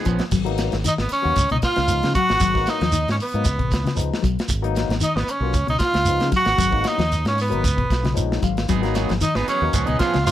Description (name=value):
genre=afrobeat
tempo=115 BPM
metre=4/4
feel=straight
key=G# dorian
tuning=A4 = 442 Hz
part: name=edgy tenor saxophone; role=melody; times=0.0-10.3 s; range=B3 to F#4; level=-22 LUFS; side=right 1 dB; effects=none
part: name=warm trumpet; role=second line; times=0.0-10.3 s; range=B4 to F#5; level=-28 LUFS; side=right 4 dB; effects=none
part: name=barky tine electric piano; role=accompaniment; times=0.0-10.3 s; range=E#3 to E#5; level=-28 LUFS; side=left 11 dB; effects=phaser
part: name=electric guitar at the edge of break-up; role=stabs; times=0.0-0.2, 8.7-10.2 s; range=E#3 to G#4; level=-27 LUFS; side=right 8 dB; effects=none
part: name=mellow electric guitar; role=arpeggios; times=0.1-10.3 s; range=B2 to F#3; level=-26 LUFS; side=left 6 dB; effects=none
part: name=fingered electric bass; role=bass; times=0.1-10.3 s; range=G#1 to C#3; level=-24 LUFS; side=right 1 dB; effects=none
part: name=tight funk drum kit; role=drums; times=0.1-10.3 s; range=crash cymbal, hi-hat, kick drum, snare drum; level=-25 LUFS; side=equal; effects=none
part: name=shekere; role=percussion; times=0.1-10.3 s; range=none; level=-26 LUFS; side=right 2 dB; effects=none
room=light reverb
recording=none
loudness=-18 LUFS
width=side -12 dB against mid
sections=0.3-10.3 A section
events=tine electric piano fill 7.9-8.7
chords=0.3 G#m7; 1.4 C#7; 2.4 G#m7; 3.5 C#7; 4.5 G#m7; 5.5 C#7; 6.6 G#m7; 7.6 C#7; 8.7 G#m7; 9.7 C#7